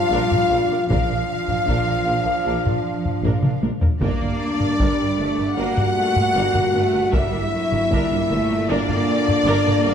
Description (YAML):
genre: cinematic, epic orchestral film score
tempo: 77 BPM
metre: 4/4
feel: straight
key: unclear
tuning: A4 = 440 Hz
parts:
  - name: rich chamber violin section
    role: melody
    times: 0.0-9.9 s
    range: D5 to F#5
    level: -31 LUFS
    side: left 6 dB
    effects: none
  - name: rich symphonic violin section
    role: second line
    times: 0.0-9.9 s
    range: D5 to F#5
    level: -28 LUFS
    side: left 2 dB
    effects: none
  - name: clear trombone section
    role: sustained chords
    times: 0.0-9.9 s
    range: Bb2 to D4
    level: -30 LUFS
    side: right 2 dB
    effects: none
  - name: dark French horn section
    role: sustained chords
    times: 0.0-9.9 s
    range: D4 to F#4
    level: -23 LUFS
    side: left 2 dB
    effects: none
  - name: dark trumpet section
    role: stabs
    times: 0.0-9.9 s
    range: D5 to F#5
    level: -27 LUFS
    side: right 1 dB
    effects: none
  - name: rich symphonic cello section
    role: bass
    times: 0.0-9.9 s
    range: F3 to Bb3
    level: -28 LUFS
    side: right 3 dB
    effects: none
  - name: warm symphonic viola section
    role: accompaniment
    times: 0.1-9.9 s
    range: D4 to Bb4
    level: -30 LUFS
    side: right 1 dB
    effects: none
  - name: warm symphonic double bass section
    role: bass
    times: 0.1-9.9 s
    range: G1 to Bb1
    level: -28 LUFS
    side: right 4 dB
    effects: none
  - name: warm tuba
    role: bass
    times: 0.1-9.9 s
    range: G1 to Bb1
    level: -31 LUFS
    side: right 3 dB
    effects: none
  - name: taiko ensemble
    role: drums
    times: 0.3-9.9 s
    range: none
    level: -23 LUFS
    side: left 1 dB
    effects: none
room: wet scoring stage reverb, RT60 1.8 s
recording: dark, warm production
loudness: -17 LUFS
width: side -8 dB against mid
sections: 0.0-9.9 A section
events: drum fill 3.2-4.0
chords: 0.0 Bb; 4.0 Gm